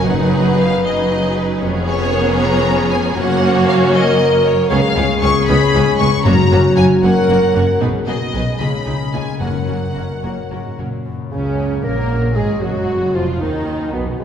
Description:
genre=classical, dramatic, fast romantic movement for symphony orchestra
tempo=77 BPM (dotted quarters)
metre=6/8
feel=rubato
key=F# major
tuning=A4 = 440 Hz
part: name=warm symphonic violin section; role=melody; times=0.0-14.0 s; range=B3 to C#6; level=-23 LUFS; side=left 2 dB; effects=none
part: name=warm symphonic violin section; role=second line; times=0.0-14.2 s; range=B3 to C#5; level=-25 LUFS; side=left 2 dB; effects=none
part: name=warm symphonic viola section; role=accompaniment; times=0.0-14.2 s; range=C#3 to D#4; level=-23 LUFS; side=right 2 dB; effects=none
part: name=mellow French horn section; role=sustained chords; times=0.0-14.2 s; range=B2 to B4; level=-19 LUFS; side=left 1 dB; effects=none
part: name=concert harp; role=arpeggios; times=0.0-14.2 s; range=E#2 to G#5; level=-23 LUFS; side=left 6 dB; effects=none
part: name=rich symphonic double bass section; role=bass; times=0.0-14.2 s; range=E#1 to D#2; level=-22 LUFS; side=right 1 dB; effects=none
part: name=warm chamber cello section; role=bass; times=0.0-14.2 s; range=C#2 to C#3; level=-21 LUFS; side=right 2 dB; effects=none
part: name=timpani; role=percussion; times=0.1-0.8, 6.3-7.0, 9.4-10.2 s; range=F#2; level=-22 LUFS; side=left 1 dB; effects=none
part: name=concert flute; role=second line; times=11.3-14.2 s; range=C#4 to B5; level=-30 LUFS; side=equal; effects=none
part: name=dark clarinet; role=second line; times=11.3-14.0 s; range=B3 to A#4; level=-24 LUFS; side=right 1 dB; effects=none
part: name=mellow bassoon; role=accompaniment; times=11.3-14.2 s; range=B2 to A#3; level=-25 LUFS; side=right 2 dB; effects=none
room=wet scoring stage reverb, RT60 2.1 s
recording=heard from further back in the room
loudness=-13 LUFS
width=side -8 dB against mid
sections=0.0-11.0 A section; 11.0-14.2 B section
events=none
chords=0.1 G#m7/F#; 1.6 C#7/E#; 3.2 F#; 4.7 C#7; 6.2 F#; 7.8 G#m/B; 8.6 C#13; 9.4 F#; 12.6 G#m7

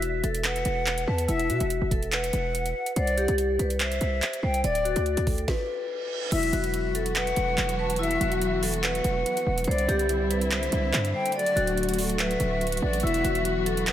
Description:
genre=hip hop, trap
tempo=143 BPM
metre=4/4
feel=half-time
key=E minor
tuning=A4 = 440 Hz
part: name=vibraphone with medium hard mallets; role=melody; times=0.0-13.9 s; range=E4 to D5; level=-28 LUFS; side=left 1 dB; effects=diffuse ambient delay
part: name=hard-hitting 808-style bass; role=bass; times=0.0-13.9 s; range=D1 to B2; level=-28 LUFS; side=right 1 dB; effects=none
part: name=trap drum kit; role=drums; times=0.0-13.9 s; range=crash cymbal, handclaps, hi-hat, kick drum, snare drum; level=-30 LUFS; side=right 1 dB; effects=overdrive
part: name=bright silver concert flute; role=second line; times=0.4-13.9 s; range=D5 to A5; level=-30 LUFS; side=left 2 dB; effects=diffuse ambient delay
part: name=reverse cymbal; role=sound effects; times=5.7-6.3 s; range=none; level=-38 LUFS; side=right 6 dB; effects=none
part: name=dark chamber string section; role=sustained chords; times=6.3-13.9 s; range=D3 to F#4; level=-31 LUFS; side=equal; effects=none
room=moderate lush hall reverb, RT60 2.0 s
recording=dreamy mix soaked in reverb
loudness=-23 LUFS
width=side -11 dB against mid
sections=0.0-6.3 A section; 6.3-13.9 B section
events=stop 5.5-6.3; reverse cymbal 5.7-6.3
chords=0.0 Esus2; 3.0 Cadd9; 4.6 D; 6.3 Esus2; 9.7 Cadd9; 11.4 D; 13.0 Esus2

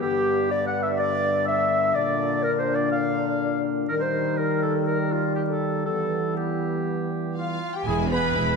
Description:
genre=cinematic, heroic adventure film score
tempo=123 BPM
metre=4/4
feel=straight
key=unclear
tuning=A4 = 439 Hz
part: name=dark clarinet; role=second line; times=0.0-7.4 s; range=F4 to F#5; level=-26 LUFS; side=left 2 dB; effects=none
part: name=warm oboe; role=second line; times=0.0-7.3 s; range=F4 to F#5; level=-30 LUFS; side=right 2 dB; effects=none
part: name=mellow French horn section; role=sustained chords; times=0.0-7.6 s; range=D3 to Eb4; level=-28 LUFS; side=left 7 dB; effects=none
part: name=warm trombone section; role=sustained chords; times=0.0-8.0 s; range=G2 to G#3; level=-29 LUFS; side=right 6 dB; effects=none
part: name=rich symphonic violin section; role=melody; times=7.4-8.6 s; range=F5 to B5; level=-30 LUFS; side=left 4 dB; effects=none
part: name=warm trumpet section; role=stabs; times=7.4-8.6 s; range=F4 to B4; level=-27 LUFS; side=right 1 dB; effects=none
part: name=rich symphonic violin section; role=second line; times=7.9-8.6 s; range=B3 to G#4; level=-31 LUFS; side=left 2 dB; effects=none
part: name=rich studio viola section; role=accompaniment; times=7.9-8.6 s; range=E3 to B3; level=-29 LUFS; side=equal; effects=none
part: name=rich symphonic double bass section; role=bass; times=7.9-8.6 s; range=E1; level=-30 LUFS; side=right 5 dB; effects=none
part: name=warm symphonic cello section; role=bass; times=7.9-8.6 s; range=E2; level=-29 LUFS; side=right 3 dB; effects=none
room=wet scoring stage reverb, RT60 2.0 s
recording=dark, warm production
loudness=-22 LUFS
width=side -4 dB against mid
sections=0.0-7.9 A section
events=none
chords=0.0 G; 2.0 Bb; 3.9 Eb; 5.9 Em; 7.9 E

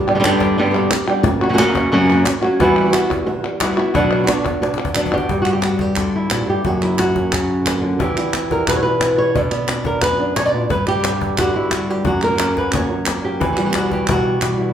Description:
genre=flamenco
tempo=178 BPM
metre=4/4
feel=straight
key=unclear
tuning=A4 = 439 Hz
part: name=flamenco guitar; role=stabs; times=0.0-14.7 s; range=E2 to G4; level=-24 LUFS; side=right 2 dB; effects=none
part: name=flamenco guitar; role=melody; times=0.1-14.7 s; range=F#2 to D5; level=-16 LUFS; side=equal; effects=none
part: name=palmas hand claps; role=percussion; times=0.1-14.6 s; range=none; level=-26 LUFS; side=right 1 dB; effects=none
part: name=cajon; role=percussion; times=0.2-14.6 s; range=none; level=-25 LUFS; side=left 3 dB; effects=none
room=wet large studio reverb, RT60 0.9 s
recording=band playing live in one room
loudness=-15 LUFS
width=side -9 dB against mid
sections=0.0-5.3 A section; 5.3-14.7 B section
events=drum fill 4.6-5.3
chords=0.0 G; 1.3 F#; 2.6 Emadd9; 3.9 Bm; 5.3 G; 6.6 F#; 8.0 Emadd9; 9.3 Bm; 10.7 G; 12.1 F#; 13.4 Emadd9

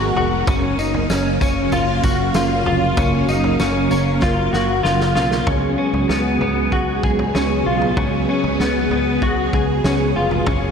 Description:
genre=dream pop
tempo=96 BPM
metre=4/4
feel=straight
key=unclear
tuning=A4 = 440 Hz
part: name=string machine, violins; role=sustained chords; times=0.0-10.7 s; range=C#3 to E#5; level=-20 LUFS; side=right 1 dB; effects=ensemble chorus
part: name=clean electric guitar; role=arpeggios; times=0.0-10.7 s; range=B3 to G#4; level=-20 LUFS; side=left 2 dB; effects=ensemble chorus, tape echo
part: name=fingered electric bass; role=bass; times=0.0-10.7 s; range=E#1 to C#2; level=-24 LUFS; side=right 1 dB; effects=none
part: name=loose indie drum kit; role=drums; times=0.2-10.6 s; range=kick drum, snare drum, tambourine, toms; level=-24 LUFS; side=equal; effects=none
room=wet lush hall reverb, RT60 1.9 s, studio ambience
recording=dreamy mix soaked in reverb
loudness=-16 LUFS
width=side -6 dB against mid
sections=0.0-5.5 A section; 5.5-10.7 B section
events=drum fill 4.2-5.5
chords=0.5 F#maj7; 5.5 C#7sus4

